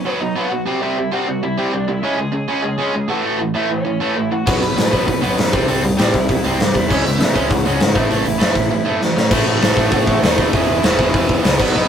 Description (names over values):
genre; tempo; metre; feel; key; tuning
punk rock; 198 BPM; 4/4; straight; unclear; A4 = 440 Hz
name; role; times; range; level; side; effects
lead guitar through a small cranked amp; melody; 0.0-11.9 s; B3 to B5; -24 LUFS; right 1 dB; overdrive
biting overdriven guitar; riff; 0.0-11.9 s; E2 to C#4; -20 LUFS; right 3 dB; none
overdriven semi-hollow guitar; riff; 0.0-11.9 s; E2 to C#4; -24 LUFS; left 4 dB; none
fuzz picked electric bass; bass; 4.5-11.9 s; E1 to B2; -23 LUFS; equal; overdrive
big rock drum kit; drums; 4.5-11.7 s; crash cymbal, hi-hat, kick drum, snare drum; -16 LUFS; equal; none
room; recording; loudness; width
light reverb; rough rehearsal-room recording; -14 LUFS; side -8 dB against mid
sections
0.0-9.3 A section; 9.3-11.9 B section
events
drum fill 9.0-9.3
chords
0.0 B; 0.7 C; 2.0 C#m; 3.1 A; 4.5 B5; 5.5 C; 6.9 C#m; 8.0 A; 9.3 A5; 10.5 E5